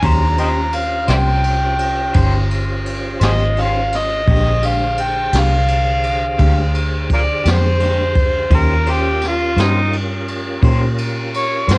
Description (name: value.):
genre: slow blues.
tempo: 57 BPM (dotted quarters).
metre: 12/8.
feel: straight.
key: unclear.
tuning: A4 = 439 Hz.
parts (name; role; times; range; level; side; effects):
overdriven harmonica; melody; 0.0-11.8 s; Eb4 to Bb5; -18 LUFS; equal; cassette tape.
electric guitar through a small old amp; accompaniment; 0.0-11.8 s; Bb2 to C5; -23 LUFS; left 2 dB; harmonic tremolo, cassette tape.
tonewheel organ; sustained chords; 0.0-11.8 s; D3 to Db5; -27 LUFS; equal; chorus vibrato, slow rotary speaker, cassette tape.
vintage muted fingered electric bass; bass; 0.0-11.8 s; G1 to Bb2; -17 LUFS; equal; none.
jazz brush drum kit; drums; 0.0-11.8 s; kick drum, ride cymbal, snare drum; -20 LUFS; equal; cassette tape.
room: little or no reverb.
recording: home recording on cassette.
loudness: -14 LUFS.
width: side -25 dB against mid.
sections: 0.0-11.8 A section.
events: harmonica solo 0.0-11.8.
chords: 0.0 Eb13; 4.3 Bb13; 8.5 Eb13.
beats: | 0.03 1.09 2.15 3.21 | 4.27 5.33 6.39 7.45 | 8.51 9.57 10.63 11.68.